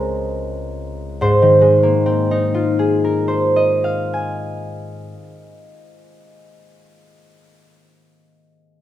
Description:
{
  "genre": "classical, solo harp piece",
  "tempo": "33 BPM (dotted quarters)",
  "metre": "6/8",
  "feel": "rubato",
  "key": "Ab major",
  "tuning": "A4 = 440 Hz",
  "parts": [
    { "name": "concert harp", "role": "solo", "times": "0.0-6.3 s", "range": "Db2 to Ab5", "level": "-15 LUFS", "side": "equal", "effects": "none" }
  ],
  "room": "moderate scoring stage reverb, RT60 1.6 s",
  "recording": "minimal, uncompressed stereo recording",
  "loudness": "-14 LUFS",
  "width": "side -12 dB against mid",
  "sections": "0.0-1.2 A section; 1.2-4.9 B section",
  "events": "slowing down 0.0-1.2",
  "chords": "0.0 Db5; 1.2 Ab69",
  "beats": "| 1.21 3.03"
}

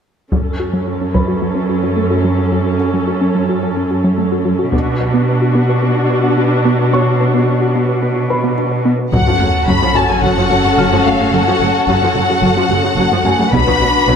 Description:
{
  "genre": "cinematic, hybrid orchestral and electronic film score",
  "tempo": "109 BPM",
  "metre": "4/4",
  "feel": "straight",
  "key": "F# harmonic minor",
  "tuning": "A4 = 440 Hz",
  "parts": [
    { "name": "dark symphonic viola section", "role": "accompaniment", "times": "0.3-14.2 s", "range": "C#3 to A4", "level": "-19 LUFS", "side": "right 1 dB", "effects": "none" },
    { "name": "tight sequenced synth", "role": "arpeggios", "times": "0.3-14.2 s", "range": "F#3 to B4", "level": "-19 LUFS", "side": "left 1 dB", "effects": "chorus, tape echo" },
    { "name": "warm symphonic cello section", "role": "bass", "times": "0.3-14.1 s", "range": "F#2 to B2", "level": "-18 LUFS", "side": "right 1 dB", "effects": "none" },
    { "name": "taiko ensemble", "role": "drums", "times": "0.3-1.4, 4.7-5.8, 9.1-10.2, 13.5-14.2 s", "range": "none", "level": "-20 LUFS", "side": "left 1 dB", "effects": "none" },
    { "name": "dark baby grand piano", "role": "texture", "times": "1.1-14.2 s", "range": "B4 to E#6", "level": "-25 LUFS", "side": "left 1 dB", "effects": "tape echo" },
    { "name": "warm symphonic violin section", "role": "melody", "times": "9.1-14.2 s", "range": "E#5 to B5", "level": "-16 LUFS", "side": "left 3 dB", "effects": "none" },
    { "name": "warm symphonic violin section", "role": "second line", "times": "9.1-14.2 s", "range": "F#4 to B4", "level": "-18 LUFS", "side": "left 4 dB", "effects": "none" },
    { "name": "rich symphonic double bass section", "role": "bass", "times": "9.1-14.1 s", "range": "F#1 to B1", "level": "-21 LUFS", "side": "right 3 dB", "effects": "none" },
    { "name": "sub drop", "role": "sound effects", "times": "9.1-11.3 s", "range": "none", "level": "-22 LUFS", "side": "equal", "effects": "none" }
  ],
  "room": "moderate scoring stage reverb, RT60 1.8 s",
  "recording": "none",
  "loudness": "-12 LUFS",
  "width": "side -7 dB against mid",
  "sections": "0.3-9.1 A section; 9.1-14.2 B section",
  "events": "impact 9.1-11.3",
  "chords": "0.3 F#m; 4.7 Bm; 9.1 F#m; 13.5 Bm",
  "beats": "| 0.32 0.87 1.42 1.97 | 2.52 3.08 3.62 4.17 | 4.73 5.28 5.83 6.38 | 6.93 7.48 8.03 8.58 | 9.13 9.68 10.23 10.78 | 11.33 11.88 12.43 12.98 | 13.53 14.08"
}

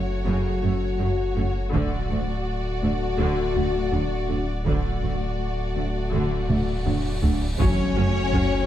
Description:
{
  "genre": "cinematic, hybrid orchestral and electronic film score",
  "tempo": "82 BPM",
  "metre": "4/4",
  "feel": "straight",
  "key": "unclear",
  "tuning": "A4 = 440 Hz",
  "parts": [
    { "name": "rich symphonic violin section", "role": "melody", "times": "0.0-8.7 s", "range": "C#5 to D5", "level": "-35 LUFS", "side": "left 2 dB", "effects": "none" },
    { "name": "warm symphonic violin section", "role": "second line", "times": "0.0-8.7 s", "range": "C#4 to F#4", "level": "-32 LUFS", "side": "left 2 dB", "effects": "none" },
    { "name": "warm French horn section", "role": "sustained chords", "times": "0.0-8.7 s", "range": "A3 to F#4", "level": "-30 LUFS", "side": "left 6 dB", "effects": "none" },
    { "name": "glassy wavetable pluck", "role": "arpeggios", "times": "0.0-8.2 s", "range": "D3 to F#4", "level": "-32 LUFS", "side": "equal", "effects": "chorus, tape echo" },
    { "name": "saturated sub bass", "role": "bass", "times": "0.0-8.7 s", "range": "D1 to F#1", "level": "-28 LUFS", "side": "equal", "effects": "none" },
    { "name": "rich symphonic viola section", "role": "accompaniment", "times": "0.3-8.4 s", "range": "C#3 to F#4", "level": "-34 LUFS", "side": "right 1 dB", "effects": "none" },
    { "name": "clear symphonic cello section", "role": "bass", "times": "0.3-8.4 s", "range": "D2 to F#2", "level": "-30 LUFS", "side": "right 2 dB", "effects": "none" },
    { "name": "rich symphonic double bass section", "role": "bass", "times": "0.3-8.4 s", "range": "F#1 to D2", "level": "-30 LUFS", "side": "right 3 dB", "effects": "none" },
    { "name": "taiko ensemble", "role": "drums", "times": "1.7-8.7 s", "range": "none", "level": "-27 LUFS", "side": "equal", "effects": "none" },
    { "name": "cymbal swell and impact", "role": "sound effects", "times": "6.5-8.7 s", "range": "none", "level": "-33 LUFS", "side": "equal", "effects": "none" }
  ],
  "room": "moderate concert hall reverb, RT60 2.2 s",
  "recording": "dark, warm production",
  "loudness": "-22 LUFS",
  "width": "side -12 dB against mid",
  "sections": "0.0-7.6 A section; 7.6-8.7 B section",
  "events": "cymbal swell 6.5-7.6; drum fill 6.5-7.6; impact 7.6-8.7",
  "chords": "0.0 F#m; 1.7 D; 7.6 F#m",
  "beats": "0.28 1.01 | 1.74 2.47 3.21 3.94 | 4.67 5.40 6.13 6.86 | 7.59 8.33"
}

